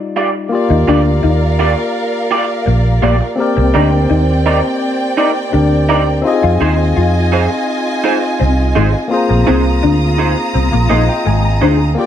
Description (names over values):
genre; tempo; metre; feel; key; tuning
reggae; 84 BPM; 4/4; straight; Eb major; A4 = 441 Hz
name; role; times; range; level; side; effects
barky tine electric piano; accompaniment; 0.0-12.1 s; G3 to Bb5; -18 LUFS; left 3 dB; none
electric guitar through a small old amp; stabs; 0.2-11.8 s; Eb4 to D5; -18 LUFS; right 3 dB; analog chorus
warm studio violin section; second line; 0.5-12.1 s; C4 to Eb6; -20 LUFS; right 2 dB; none
electric guitar through a small old amp; riff; 0.7-11.8 s; Ab3 to F4; -19 LUFS; left 5 dB; ensemble chorus
vintage muted fingered electric bass; bass; 0.7-11.9 s; Ab1 to F2; -14 LUFS; right 1 dB; none
room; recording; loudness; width
light reverb, digital ambience; none; -11 LUFS; side -10 dB against mid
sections
0.5-12.1 A section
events
tine electric piano fill 10.5-12.0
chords
0.0 Ebmaj9; 3.4 Cm9; 6.2 Fm7; 9.1 Bb9sus4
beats
| 0.52 1.24 1.95 2.67 | 3.38 4.10 4.82 5.53 | 6.25 6.97 7.68 8.40 | 9.12 9.83 10.55 11.26 | 11.98